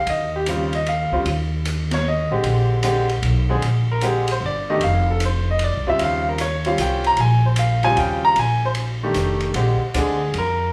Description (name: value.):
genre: jazz piano trio.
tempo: 152 BPM.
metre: 3/4.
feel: swing 67% on 8ths.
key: Bb mixolydian.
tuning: A4 = 440 Hz.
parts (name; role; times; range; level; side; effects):
clear grand piano; melody; 0.0-10.7 s; Db3 to Bb5; -23 LUFS; equal; none.
upright bass; bass; 0.0-10.7 s; F1 to F2; -24 LUFS; equal; none.
open jazz drum kit; drums; 0.1-10.5 s; hi-hat, ride cymbal, snare drum; -32 LUFS; equal; none.
room: moderate large studio reverb, RT60 0.8 s.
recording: band playing live in one room.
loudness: -20 LUFS.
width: mono.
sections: 0.0-9.6 A section; 9.6-10.7 B section.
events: grand piano solo 9.6-10.7.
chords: 0.1 Ebadd9; 2.4 Bb13; 4.8 F5; 6.0 Eb13; 7.2 Bbsus2; 8.0 Eb13; 8.4 N.C.; 9.2 F13; 9.6 Bb9.